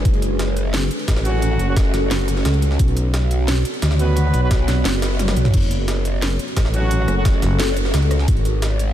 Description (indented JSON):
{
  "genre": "dark technical drum and bass",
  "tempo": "175 BPM",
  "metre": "4/4",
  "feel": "straight",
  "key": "F# minor",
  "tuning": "A4 = 440 Hz",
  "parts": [
    { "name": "deep dark ambient pad", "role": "sustained chords", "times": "0.0-8.9 s", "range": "G#3 to D5", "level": "-25 LUFS", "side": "equal", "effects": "chorus, built-in reverb, sidechain pumping" },
    { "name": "growl bass", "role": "bass", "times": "0.0-8.9 s", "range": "F#1 to D2", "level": "-19 LUFS", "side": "equal", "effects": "chorus" },
    { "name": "drum and bass drum kit", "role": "drums", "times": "0.1-8.9 s", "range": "crash cymbal, hi-hat, rim click, snare drum, toms", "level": "-26 LUFS", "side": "equal", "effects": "none" },
    { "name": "electronic kick drum", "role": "drums", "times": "0.1-8.3 s", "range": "none", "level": "-18 LUFS", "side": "equal", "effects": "none" },
    { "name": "jungle sampler-style drum kit", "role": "drums", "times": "0.1-8.9 s", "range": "hi-hat, snare drum", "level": "-30 LUFS", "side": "equal", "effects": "high-pass filter on hats, high-pass filter on snare, high-pass filter on room" },
    { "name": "warm brass ensemble", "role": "stabs", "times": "1.3-1.7, 4.0-4.5, 6.7-7.2 s", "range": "F#3 to B4", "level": "-29 LUFS", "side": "right 2 dB", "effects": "tape echo" },
    { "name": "growling FM bass", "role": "bass", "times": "7.4-7.6 s", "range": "F#1", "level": "-16 LUFS", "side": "equal", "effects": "tube saturation" }
  ],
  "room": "light reverb",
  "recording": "none",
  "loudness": "-16 LUFS",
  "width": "side -11 dB against mid",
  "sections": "0.0-8.9 A section",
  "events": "drum fill 5.2-5.5",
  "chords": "0.1 F#m; 2.8 Bm; 5.5 F#m; 8.3 G#dim"
}